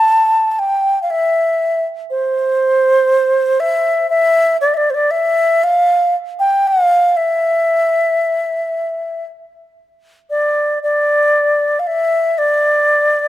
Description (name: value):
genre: celtic folk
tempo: 39 BPM (dotted quarters)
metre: 6/8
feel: rubato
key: D minor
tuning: A4 = 442 Hz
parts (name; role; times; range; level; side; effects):
- baroque flute; solo; 0.0-13.3 s; C5 to A5; -12 LUFS; equal; none
room: light reverb, small room reverb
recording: rough home demo mix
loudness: -12 LUFS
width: side -14 dB against mid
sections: 0.0-10.3 A section; 10.3-13.3 B section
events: none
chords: none